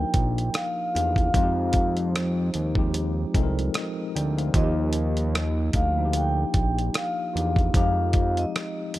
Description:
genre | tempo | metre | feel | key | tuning
R&B, neo-soul | 75 BPM | 4/4 | swing 55% on 16ths | Eb major | A4 = 443 Hz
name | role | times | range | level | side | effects
vibraphone with soft mallets | melody | 0.0-9.0 s | C5 to G5 | -28 LUFS | equal | slapback echo
tine electric piano | accompaniment | 0.0-9.0 s | F3 to G5 | -30 LUFS | left 1 dB | medium stereo tremolo
fat analog bass | bass | 0.0-9.0 s | Bb1 to F2 | -25 LUFS | equal | none
dusty soul sampler-style drum kit | drums | 0.1-9.0 s | hi-hat, kick drum, rim click | -25 LUFS | equal | none
room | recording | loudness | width
little or no reverb | none | -22 LUFS | side -16 dB against mid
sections
0.0-9.0 A section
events
none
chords
0.0 Ebmaj9; 1.3 Fm9; 4.5 Ebmaj9; 7.7 Fm9

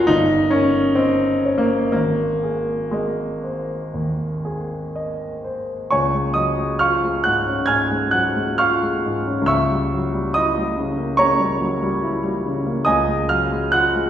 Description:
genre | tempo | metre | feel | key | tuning
classical, romantic character piece for solo piano | 59-73 BPM | 4/4 | rubato | Db major | A4 = 440 Hz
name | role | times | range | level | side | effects
warm grand piano | solo | 0.0-14.1 s | G1 to Ab6 | -17 LUFS | equal | none
room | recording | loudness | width
wet recital hall reverb, RT60 1.5 s | recorded in a church or concert hall | -18 LUFS | side -10 dB against mid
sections
0.0-5.9 A section; 5.9-14.1 B section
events
none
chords
0.1 Eb7/G; 1.9 Ab; 5.9 Db; 9.5 Dbdim7; 12.9 Db

